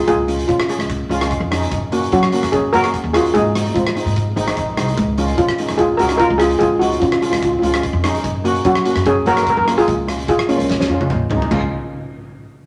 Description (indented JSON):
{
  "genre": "calypso",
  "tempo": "147 BPM",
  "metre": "4/4",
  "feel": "straight",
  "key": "Db major",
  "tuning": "A4 = 440 Hz",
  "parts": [
    { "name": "steel pan", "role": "melody", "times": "0.0-11.0 s", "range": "Bb3 to Bb4", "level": "-18 LUFS", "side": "equal", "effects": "none" },
    { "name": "steel pan", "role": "accompaniment", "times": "0.0-11.7 s", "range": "Ab3 to Ab4", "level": "-25 LUFS", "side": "equal", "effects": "none" },
    { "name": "upright bass", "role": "bass", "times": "0.1-11.7 s", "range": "Ab1 to Gb3", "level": "-25 LUFS", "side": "equal", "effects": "none" },
    { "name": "oversized low-tuned drum kit", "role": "drums", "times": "0.1-11.6 s", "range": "crash cymbal, hi-hat, kick drum, rim click, snare drum, toms", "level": "-26 LUFS", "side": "equal", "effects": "none" }
  ],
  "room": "moderate studio reverb, RT60 0.6 s",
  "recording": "none",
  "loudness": "-17 LUFS",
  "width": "mono",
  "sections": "0.0-11.5 A section; 11.5-12.7 B section",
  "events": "drum fill 10.7-11.5",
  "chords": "0.0 Db; 1.7 Gb; 3.3 Ab; 5.0 Db; 8.2 Gb; 9.9 Db",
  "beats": "| 0.07 0.48 0.89 1.30 | 1.71 2.12 2.52 2.93 | 3.34 3.75 4.16 4.56 | 4.97 5.38 5.79 6.20 | 6.61 7.01 7.42 7.83 | 8.24 8.65 9.05 9.46 | 9.87 10.28 10.69 11.10 | 11.51"
}